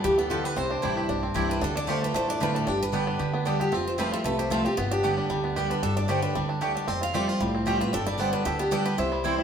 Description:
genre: bluegrass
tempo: 228 BPM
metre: 4/4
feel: straight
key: unclear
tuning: A4 = 441 Hz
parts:
  - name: picked steel-string acoustic guitar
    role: melody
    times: 0.0-9.4 s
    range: F4 to F5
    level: -29 LUFS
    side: right 1 dB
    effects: none
  - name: picked steel-string acoustic guitar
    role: accompaniment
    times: 0.0-9.4 s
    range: F2 to G4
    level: -28 LUFS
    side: left 1 dB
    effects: none
  - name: bluegrass banjo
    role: arpeggios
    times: 0.0-9.4 s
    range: G3 to G4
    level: -30 LUFS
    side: right 2 dB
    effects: none
  - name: upright bass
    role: bass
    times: 0.0-9.4 s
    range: F1 to D2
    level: -36 LUFS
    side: left 1 dB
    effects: none
  - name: mandolin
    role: stabs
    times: 0.3-9.3 s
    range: A3 to A5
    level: -34 LUFS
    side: right 3 dB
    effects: none
room: wet stone room reverb, RT60 1.2 s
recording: band playing live in one room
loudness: -24 LUFS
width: side -7 dB against mid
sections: 0.0-1.6 A section; 1.6-9.4 B section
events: none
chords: 0.0 G7; 0.6 Cadd9; 1.6 Dm; 2.7 G; 3.7 F; 4.8 G; 5.8 Gsus2; 6.9 Fadd9; 7.9 G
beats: 0.04 0.30 | 0.57 0.83 1.09 1.36 | 1.62 1.88 2.15 2.41 | 2.67 2.94 3.20 3.46 | 3.73 3.99 4.25 4.51 | 4.78 5.04 5.30 5.57 | 5.83 6.09 6.36 6.62 | 6.88 7.14 7.41 7.67 | 7.93 8.19 8.46 8.72 | 8.98 9.24

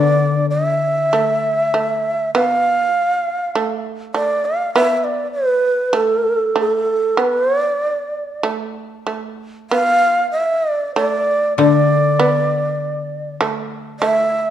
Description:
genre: japanese traditional, Japanese chamber music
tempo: 49 BPM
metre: 2/4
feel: rubato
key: D kumoi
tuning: A4 = 440 Hz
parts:
  - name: breathy reedy long shakuhachi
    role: melody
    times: 0.0-14.5 s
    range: A4 to F5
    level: -16 LUFS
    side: right 2 dB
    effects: none
  - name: shamisen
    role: second line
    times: 0.0-14.5 s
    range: A3 to B3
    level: -21 LUFS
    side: right 3 dB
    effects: none
  - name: koto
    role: accompaniment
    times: 0.0-3.2, 11.6-14.5 s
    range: D3 to B4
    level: -18 LUFS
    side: left 7 dB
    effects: none
room: moderate scoring stage reverb, RT60 1.6 s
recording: dark, warm production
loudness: -15 LUFS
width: side -10 dB against mid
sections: 0.0-9.7 A section; 9.7-14.5 B section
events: none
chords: none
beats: 1.13 | 2.35 3.55 | 4.74 5.94 | 7.17 8.43 | 9.71 10.96 | 12.20 13.41

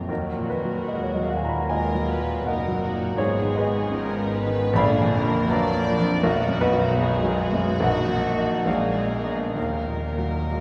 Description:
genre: classical, romantic movement for piano and orchestra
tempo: 62-83 BPM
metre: 4/4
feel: rubato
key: Eb minor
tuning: A4 = 436 Hz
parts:
  - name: clear grand piano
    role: melody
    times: 0.0-10.6 s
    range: Bb1 to Cb6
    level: -26 LUFS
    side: equal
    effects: none
  - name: dark studio violin section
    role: second line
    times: 0.1-10.6 s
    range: D4 to Bb4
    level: -36 LUFS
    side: equal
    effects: none
  - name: warm studio viola section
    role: accompaniment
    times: 0.1-10.6 s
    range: D3 to D4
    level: -32 LUFS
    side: equal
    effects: none
  - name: dark studio double bass section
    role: bass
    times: 0.1-10.6 s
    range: Gb1 to Eb2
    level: -35 LUFS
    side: equal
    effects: none
  - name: warm studio cello section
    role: bass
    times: 0.1-10.6 s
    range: Eb2 to Eb3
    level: -34 LUFS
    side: equal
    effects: none
  - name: rich studio violin section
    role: melody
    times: 1.7-10.6 s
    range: Gb4 to D5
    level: -34 LUFS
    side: equal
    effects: none
  - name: timpani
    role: percussion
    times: 4.7-10.6 s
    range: Bb2 to Eb3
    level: -35 LUFS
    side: equal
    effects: none
room: wet concert hall reverb, RT60 2.5 s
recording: recorded in a church or concert hall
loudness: -23 LUFS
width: mono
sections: 0.0-10.6 A section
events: none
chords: 0.1 Ebm; 3.2 Abm; 4.8 Bb; 6.2 B; 7.8 Ebm/Bb; 8.7 Bb7; 9.6 Ebm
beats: | 0.09 0.91 1.70 2.46 | 3.19 3.93 4.76 5.51 | 6.25 7.00 7.85 8.67 | 9.56 10.51

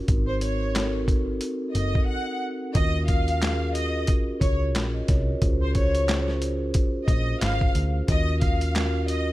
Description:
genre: hip hop, boom-bap hip-hop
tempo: 90 BPM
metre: 4/4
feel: swing 58% on 16ths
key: Eb dorian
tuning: A4 = 441 Hz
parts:
  - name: vibraphone with soft mallets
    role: accompaniment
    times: 0.0-9.3 s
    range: C4 to Eb5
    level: -29 LUFS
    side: equal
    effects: cassette tape
  - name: hollow-body short-scale picked electric bass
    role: bass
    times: 0.1-9.3 s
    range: Gb1 to Eb2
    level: -26 LUFS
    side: equal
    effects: none
  - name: boom bap sampler-style drum kit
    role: drums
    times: 0.1-9.3 s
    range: handclaps, hi-hat, kick drum, snare drum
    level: -24 LUFS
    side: equal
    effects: none
  - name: rich studio violin section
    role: melody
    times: 0.3-9.3 s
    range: C5 to Gb5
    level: -30 LUFS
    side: equal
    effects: analog delay
room: little or no reverb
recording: dark, warm production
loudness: -22 LUFS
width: side -16 dB against mid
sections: 0.0-2.8 A section; 2.8-9.3 B section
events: break 2.1-2.8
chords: 0.1 Ab7; 2.8 Ebm7; 5.4 Bbm7/Db; 8.1 Ebm7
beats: | 0.08 0.75 1.42 2.08 | 2.75 3.42 4.08 4.75 | 5.42 6.08 6.75 7.42 | 8.08 8.75

